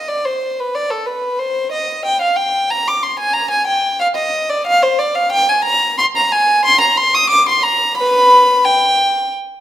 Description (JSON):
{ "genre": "classical, baroque-style suite movement for unaccompanied violin", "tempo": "91 BPM", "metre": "3/4", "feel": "rubato", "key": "C minor", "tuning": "A4 = 441 Hz", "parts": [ { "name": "warm violin", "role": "solo", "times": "0.0-9.3 s", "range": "A4 to Eb6", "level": "-12 LUFS", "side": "equal", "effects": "none" } ], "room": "moderate recital hall reverb, RT60 1.3 s", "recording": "none", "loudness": "-12 LUFS", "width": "side -12 dB against mid", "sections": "0.0-9.6 A section", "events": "none", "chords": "none" }